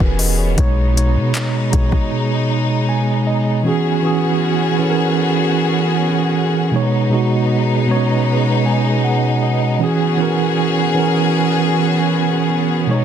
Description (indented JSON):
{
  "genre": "contemporary R&B",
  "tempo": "78 BPM",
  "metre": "4/4",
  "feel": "straight",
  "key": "unclear",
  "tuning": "A4 = 440 Hz",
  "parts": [
    { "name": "mellow tine electric piano", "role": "accompaniment", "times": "0.0-13.0 s", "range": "B2 to G#5", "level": "-16 LUFS", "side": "right 3 dB", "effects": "medium stereo tremolo" },
    { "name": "warm studio string section", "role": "sustained chords", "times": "0.0-13.0 s", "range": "E3 to G#4", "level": "-20 LUFS", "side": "left 5 dB", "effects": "sidechain pumping" },
    { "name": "warm 808-style bass", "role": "bass", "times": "0.0-2.1 s", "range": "E1 to B2", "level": "-17 LUFS", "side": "left 1 dB", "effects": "none" },
    { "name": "smooth R&B drum kit", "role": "drums", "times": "0.0-2.1 s", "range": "handclaps, hi-hat, kick drum", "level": "-18 LUFS", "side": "left 1 dB", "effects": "overdrive" }
  ],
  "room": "light reverb",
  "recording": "dense, heavily limited modern master",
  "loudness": "-14 LUFS",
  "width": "side -8 dB against mid",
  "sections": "0.0-3.7 A section; 3.7-13.0 A section",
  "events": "tine electric piano fill 2.5-3.7, 8.3-9.8",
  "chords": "0.0 E69; 0.6 B69; 3.7 E69; 6.7 B69; 9.8 E69",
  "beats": "| 0.58 1.35 2.12 2.89 | 3.66 4.43 5.20 5.96 | 6.73 7.50 8.27 9.04 | 9.81 10.58 11.35 12.12 | 12.89"
}